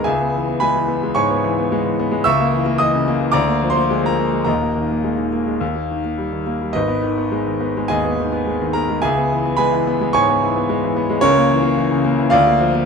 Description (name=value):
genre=classical, virtuoso piano study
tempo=108 BPM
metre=4/4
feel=rubato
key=unclear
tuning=A4 = 440 Hz
part: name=warm concert grand piano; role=solo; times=0.0-12.9 s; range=D#1 to E6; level=-16 LUFS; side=equal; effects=none
room=light reverb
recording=minimal, uncompressed stereo recording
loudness=-16 LUFS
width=side -5 dB against mid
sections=0.0-12.9 A section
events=none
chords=0.1 C#m7; 2.2 A#dim/C#; 3.3 A#7/D; 4.5 D#sus4; 5.6 D#; 6.8 G#m; 9.0 C#m7; 11.2 A#dim/C#; 12.3 A#/D